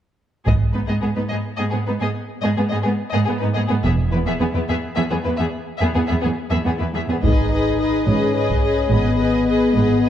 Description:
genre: cinematic, epic orchestral film score.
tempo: 71 BPM (dotted quarters).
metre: 12/8.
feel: straight.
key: G# minor.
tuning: A4 = 442 Hz.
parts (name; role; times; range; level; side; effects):
rich chamber violin section; melody; 0.5-10.1 s; G#4 to E5; -27 LUFS; left 4 dB; none.
rich symphonic violin section; second line; 0.5-10.1 s; B3 to B4; -28 LUFS; left 2 dB; none.
rich symphonic viola section; accompaniment; 0.5-10.1 s; B3 to G#4; -26 LUFS; right 2 dB; none.
rich studio double bass section; bass; 0.5-10.1 s; E1 to G#1; -22 LUFS; right 2 dB; none.
rich symphonic cello section; bass; 0.5-10.1 s; E2 to G#2; -22 LUFS; right 2 dB; none.
taiko ensemble; drums; 0.5-1.6, 7.2-8.8 s; none; -23 LUFS; equal; none.
mellow French horn section; sustained chords; 7.2-10.1 s; B3 to D#4; -19 LUFS; left 4 dB; none.
room: wet scoring stage reverb, RT60 1.9 s.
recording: dark, warm production.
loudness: -17 LUFS.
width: side -10 dB against mid.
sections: 0.5-7.2 A section; 7.2-10.1 B section.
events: none.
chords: 0.5 G#m; 3.8 E; 7.2 G#m.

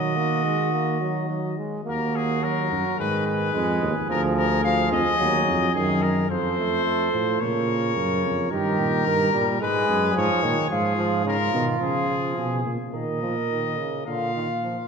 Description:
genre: classical, imitative canzona for brass ensemble.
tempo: 108 BPM.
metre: 4/4.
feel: straight.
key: Eb minor.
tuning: A4 = 440 Hz.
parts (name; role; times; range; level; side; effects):
bright trumpet; melody; 0.0-14.9 s; Ab4 to F5; -26 LUFS; left 7 dB; none.
warm flugelhorn; second line; 0.0-14.9 s; F4 to Bb4; -27 LUFS; right 4 dB; none.
clear trombone; accompaniment; 0.0-14.8 s; Db3 to Bb3; -28 LUFS; right 2 dB; none.
mellow tuba; bass; 0.0-14.9 s; D2 to Eb3; -26 LUFS; right 1 dB; none.
room: wet concert hall reverb, RT60 2.4 s.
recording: minimal, uncompressed stereo recording.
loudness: -21 LUFS.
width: side -5 dB against mid.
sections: 0.0-1.9 A section; 1.9-6.3 B section; 6.3-14.9 A section.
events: none.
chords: 0.0 Ebm; 3.0 Abm; 4.1 Bb/D; 5.2 Ebm; 6.3 F; 7.4 Bbm; 8.5 Eb/G; 9.6 Abm; 10.7 Fdim/Ab; 12.9 Bbsus4; 14.1 Bb.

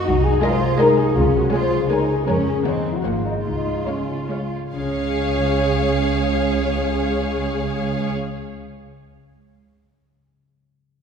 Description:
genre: cinematic, playful, whimsical film cue.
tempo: 134-165 BPM.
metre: 3/4.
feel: straight.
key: Db major.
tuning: A4 = 440 Hz.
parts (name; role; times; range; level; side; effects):
concert harp; arpeggios; 0.0-8.6 s; Ab2 to Ab5; -24 LUFS; left 4 dB; none.
dark studio cello section; bass; 0.0-8.1 s; Db2 to F4; -27 LUFS; right 3 dB; none.
mellow French horn section; sustained chords; 0.1-8.1 s; Db4 to C5; -23 LUFS; left 1 dB; none.
warm studio double bass section; bass; 0.1-8.1 s; Ab1 to F2; -25 LUFS; right 3 dB; none.
warm studio violin section; melody; 0.4-8.1 s; F5 to Ab5; -32 LUFS; left 3 dB; none.
dark studio violin section; second line; 0.4-8.1 s; C5 to Eb5; -28 LUFS; left 1 dB; none.
dark studio viola section; accompaniment; 0.4-8.1 s; Ab3 to Ab4; -28 LUFS; equal; none.
room: wet concert hall reverb, RT60 2.3 s.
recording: heard from further back in the room.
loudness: -18 LUFS.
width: side -7 dB against mid.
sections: 0.0-4.7 A section; 4.7-7.4 B section.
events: slowing down 1.7-4.7.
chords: 0.1 Ab7/C; 1.2 Db; 2.3 Db/F; 2.7 Ebm7; 3.0 Ab9; 3.5 Db.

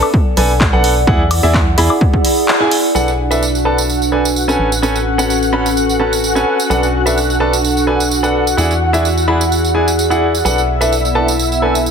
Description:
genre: piano house.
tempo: 128 BPM.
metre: 4/4.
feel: straight.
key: B dorian.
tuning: A4 = 440 Hz.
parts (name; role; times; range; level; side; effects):
clear concert grand piano; riff; 0.0-11.8 s; C#4 to B5; -17 LUFS; equal; sidechain pumping, low-pass filter, ping-pong delay.
punchy analog drum machine; drums; 0.0-11.9 s; handclaps, hi-hat, tambourine, woodblock; -20 LUFS; right 2 dB; none.
warbly tape-like pad; texture; 0.0-11.9 s; B3 to G#5; -18 LUFS; right 1 dB; chorus, built-in reverb, sidechain pumping.
electronic kick drum; drums; 0.1-2.2 s; none; -14 LUFS; equal; none.
organ-like FM bass; bass; 0.4-11.9 s; A1 to E2; -18 LUFS; equal; sidechain pumping.
analog string pad; sustained chords; 3.0-11.9 s; E4 to F#5; -20 LUFS; left 1 dB; ensemble chorus, sidechain pumping.
room: moderate digital room reverb, RT60 1.0 s, digital ambience.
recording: heavily compressed radio sound.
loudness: -11 LUFS.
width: side -6 dB against mid.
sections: 0.0-3.0 A section; 3.0-11.9 B section.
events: kick drops out 2.5-3.0; band accent 2.5.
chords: 0.0 Bm7; 1.1 E9; 3.0 Bm7; 4.6 Amaj9; 6.7 Bm7; 8.6 E9; 10.4 Bm7.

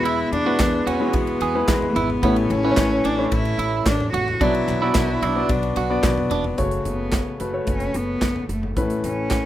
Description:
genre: piano-driven pop.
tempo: 110 BPM.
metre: 4/4.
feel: straight.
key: unclear.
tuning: A4 = 438 Hz.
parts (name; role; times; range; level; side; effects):
rich cello; melody; 0.0-9.5 s; G#3 to F#4; -25 LUFS; equal; plate reverb.
clear grand piano; accompaniment; 0.0-9.5 s; A2 to D5; -23 LUFS; left 2 dB; plate reverb.
upright bass; bass; 0.0-9.4 s; E1 to E2; -28 LUFS; equal; none.
electric guitar at the edge of break-up; riff; 0.1-6.4 s; B3 to G#4; -25 LUFS; right 7 dB; none.
modern studio drum kit; drums; 0.1-9.4 s; handclaps, hi-hat, kick drum, ride cymbal, snare drum, toms; -24 LUFS; equal; none.
group handclap; percussion; 0.6-6.2 s; none; -37 LUFS; left 2 dB; none.
room: light reverb.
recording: rough home demo mix.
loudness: -19 LUFS.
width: side -13 dB against mid.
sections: 0.0-6.6 A section; 6.6-9.5 B section.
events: none.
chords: 0.0 E; 2.2 A; 4.4 Bm; 6.6 F#m; 8.8 Aadd9.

